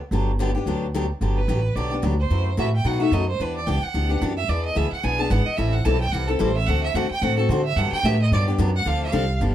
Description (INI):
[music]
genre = acoustic string swing (jazz manouche)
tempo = 220 BPM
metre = 4/4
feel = swing 58% on 8ths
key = G major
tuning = A4 = 440 Hz
[part]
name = picked steel-string acoustic guitar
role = accompaniment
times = 0.1-9.5 s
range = B2 to A4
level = -26 LUFS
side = left 4 dB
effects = none
[part]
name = upright bass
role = bass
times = 0.1-9.5 s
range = G1 to D3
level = -22 LUFS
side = equal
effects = none
[part]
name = bright violin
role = second line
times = 1.4-9.4 s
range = A4 to A5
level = -26 LUFS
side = right 4 dB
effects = none
[sound]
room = moderate studio reverb, RT60 0.6 s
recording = dark, warm production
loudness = -20 LUFS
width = side -11 dB against mid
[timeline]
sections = 0.0-1.2 A section; 1.2-9.5 B section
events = violin solo 1.2-9.5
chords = 0.0 Gmaj7; 2.3 F#m7b5; 2.9 B7; 3.4 Em7; 4.5 E7; 5.6 Am7; 6.7 D7; 7.8 Gmaj7; 8.9 Dm7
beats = | 0.12 0.39 0.67 0.94 | 1.21 1.48 1.76 2.03 | 2.30 2.58 2.85 3.12 | 3.40 3.67 3.94 4.22 | 4.49 4.76 5.04 5.31 | 5.58 5.86 6.13 6.41 | 6.68 6.95 7.22 7.50 | 7.77 8.04 8.32 8.59 | 8.86 9.14 9.41